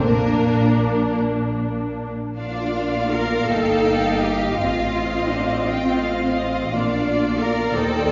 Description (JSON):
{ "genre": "classical, slow romantic movement for string orchestra", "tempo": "48-59 BPM (dotted quarters)", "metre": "6/8", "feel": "rubato", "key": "Bb major", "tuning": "A4 = 440 Hz", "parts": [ { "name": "warm symphonic violin section", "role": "melody", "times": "0.0-8.1 s", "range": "Bb4 to G5", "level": "-31 LUFS", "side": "equal", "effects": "none" }, { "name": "rich symphonic violin section", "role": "second line", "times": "0.0-8.1 s", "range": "Bb3 to G5", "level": "-29 LUFS", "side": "equal", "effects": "none" }, { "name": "warm studio viola section", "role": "accompaniment", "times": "0.0-8.1 s", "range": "Bb3 to F4", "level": "-25 LUFS", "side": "equal", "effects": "none" }, { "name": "rich symphonic cello section", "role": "bass", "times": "0.0-8.1 s", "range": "Bb2 to Bb4", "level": "-26 LUFS", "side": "equal", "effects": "none" }, { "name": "rich symphonic double bass section", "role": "bass", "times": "0.0-8.1 s", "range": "G1 to Eb2", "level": "-29 LUFS", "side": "equal", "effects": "none" } ], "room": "wet concert hall reverb, RT60 1.8 s", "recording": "heard from further back in the room, nothing above 7.6 kHz", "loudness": "-21 LUFS", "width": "mono", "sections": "0.0-2.4 A section; 2.4-8.1 B section", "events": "none", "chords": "0.0 Bb; 3.5 Eb/G; 4.6 F7/A; 6.7 Bb" }